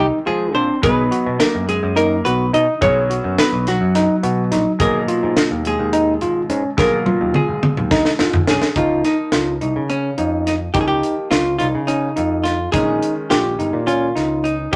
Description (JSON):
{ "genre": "progressive instrumental, band music in an uneven meter", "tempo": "212 BPM (eighths)", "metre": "7/8", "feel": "straight", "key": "Db lydian from 8.8 s", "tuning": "A4 = 441 Hz", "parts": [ { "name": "archtop guitar, miked and amplified", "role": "melody", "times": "0.0-14.8 s", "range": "Db4 to Eb5", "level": "-23 LUFS", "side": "equal", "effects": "none" }, { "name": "mellow electric guitar", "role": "second line", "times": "0.0-8.2 s", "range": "Gb3 to Eb4", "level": "-26 LUFS", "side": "equal", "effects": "none" }, { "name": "bright concert grand piano", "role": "accompaniment", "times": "0.0-14.8 s", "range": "Cb3 to Gb4", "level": "-32 LUFS", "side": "equal", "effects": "none" }, { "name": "barky tine electric piano", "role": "arpeggios", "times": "0.0-14.8 s", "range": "Db4 to Ab4", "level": "-22 LUFS", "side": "equal", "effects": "none" }, { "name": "picked electric bass", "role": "bass", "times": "0.0-14.8 s", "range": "G1 to F3", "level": "-26 LUFS", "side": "equal", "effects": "none" }, { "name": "tight funk drum kit", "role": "drums", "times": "0.8-14.8 s", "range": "hi-hat, kick drum, snare drum, toms", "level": "-22 LUFS", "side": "equal", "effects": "none" } ], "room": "moderate studio reverb, RT60 0.6 s", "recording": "none", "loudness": "-18 LUFS", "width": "mono", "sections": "0.0-8.8 A section; 8.8-14.8 B section", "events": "drum fill 6.8-8.8", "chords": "0.0 Fm; 0.8 Cbadd9; 4.8 Abm; 8.8 Dbadd9; 12.7 Bbm" }